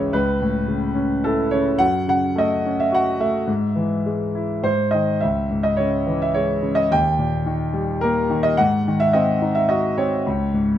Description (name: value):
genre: classical, lyrical solo piano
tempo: 107 BPM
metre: 3/4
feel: rubato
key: C# minor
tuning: A4 = 442 Hz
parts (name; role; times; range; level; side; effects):
- warm concert grand piano; solo; 0.0-10.8 s; C#2 to G5; -18 LUFS; equal; none
room: light reverb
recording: close, detailed microphones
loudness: -18 LUFS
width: side -11 dB against mid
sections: 0.0-10.8 A section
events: none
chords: 0.1 Aadd9/C#; 1.8 F#m; 3.5 E/G#; 4.6 G#; 5.2 C#m; 6.9 D#; 8.6 G#7; 10.2 C#5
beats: | 0.14 0.69 1.25 | 1.80 2.36 2.92 | 3.48 4.05 4.64 | 5.22 5.79 6.35 | 6.91 7.47 8.03 | 8.59 9.14 9.69 | 10.25